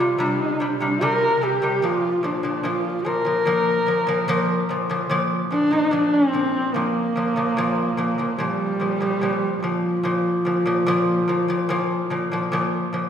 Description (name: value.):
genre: mongolian traditional, Mongolian folk.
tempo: 73 BPM.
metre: 4/4.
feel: straight.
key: Bb gong mode.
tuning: A4 = 440 Hz.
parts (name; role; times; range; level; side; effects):
dark horsehead fiddle; melody; 0.0-12.6 s; F3 to Bb4; -21 LUFS; equal; none.
lute; arpeggios; 0.0-13.1 s; Bb2 to G3; -23 LUFS; equal; none.
room: wet scoring stage reverb, RT60 2.0 s.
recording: heard from further back in the room.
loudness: -19 LUFS.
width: side -8 dB against mid.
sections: 0.0-5.1 A section; 5.1-13.1 B section.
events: none.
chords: 0.0 C5; 1.8 Bb5.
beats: 0.20 1.01 | 1.83 2.65 3.47 4.29 | 5.11 5.93 6.75 7.57 | 8.39 9.22 10.04 10.87 | 11.69 12.52.